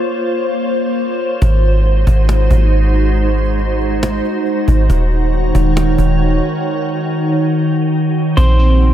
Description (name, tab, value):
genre	hip hop, atmospheric cloud-rap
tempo	138 BPM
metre	4/4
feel	half-time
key	unclear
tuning	A4 = 440 Hz
part	glassy FM pad	sustained chords	0.0-8.9 s	Db3 to Db5	-16 LUFS	equal	ensemble chorus, built-in reverb
part	soft 808-style bass	bass	1.4-8.9 s	Eb1 to Bb1	-12 LUFS	equal	none
part	cajon	drums	1.4-8.9 s	none	-21 LUFS	equal	none
part	semi-hollow electric guitar	melody	8.4-8.9 s	C5	-18 LUFS	left 1 dB	ping-pong delay
part	glassy digital keys	arpeggios	8.4-8.9 s	C4	-20 LUFS	right 5 dB	chorus, ping-pong delay
room	light reverb, digital ambience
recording	none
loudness	-12 LUFS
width	side -11 dB against mid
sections	0.0-8.4 A section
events	break 6.6-8.4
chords	0.0 Bbmadd9; 1.4 Ab7; 4.9 Ebm7; 8.4 Bbmadd9